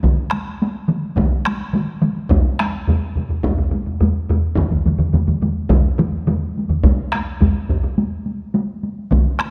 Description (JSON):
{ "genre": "japanese traditional, taiko drum ensemble", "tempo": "106 BPM", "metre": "4/4", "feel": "straight", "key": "none", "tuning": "none", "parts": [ { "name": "taiko ensemble", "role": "percussion", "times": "0.0-9.5 s", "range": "none", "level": "-24 LUFS", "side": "equal", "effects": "none" }, { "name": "taiko ensemble", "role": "percussion", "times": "0.0-9.2 s", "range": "none", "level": "-21 LUFS", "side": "equal", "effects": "none" }, { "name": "taiko ensemble", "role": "percussion", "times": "0.1-9.5 s", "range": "none", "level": "-26 LUFS", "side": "equal", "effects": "none" }, { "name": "taiko ensemble", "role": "percussion", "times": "2.3-8.0 s", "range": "none", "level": "-22 LUFS", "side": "equal", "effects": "none" } ], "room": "moderate concert hall reverb, RT60 2.2 s", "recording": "close, detailed microphones", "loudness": "-19 LUFS", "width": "mono", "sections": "0.0-6.8 A section; 6.8-9.5 B section", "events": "none", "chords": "none", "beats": "| 0.04 0.61 1.18 1.74 | 2.31 2.88 3.45 4.02 | 4.58 5.15 5.72 6.28 | 6.85 7.42 7.98 8.55 | 9.11" }